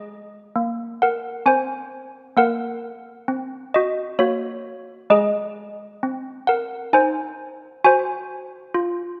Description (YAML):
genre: classical, tune for handbells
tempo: 66 BPM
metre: 3/4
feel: straight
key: unclear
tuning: A4 = 440 Hz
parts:
  - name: malleted handbells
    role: solo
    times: 0.0-9.2 s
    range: Ab3 to Ab5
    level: -22 LUFS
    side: equal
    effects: none
room: moderate concert hall reverb, RT60 1.9 s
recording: none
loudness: -22 LUFS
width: mono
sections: 0.0-9.2 A section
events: none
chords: 0.0 Ab; 2.4 Gb/Bb; 5.1 Ab; 7.8 Ab7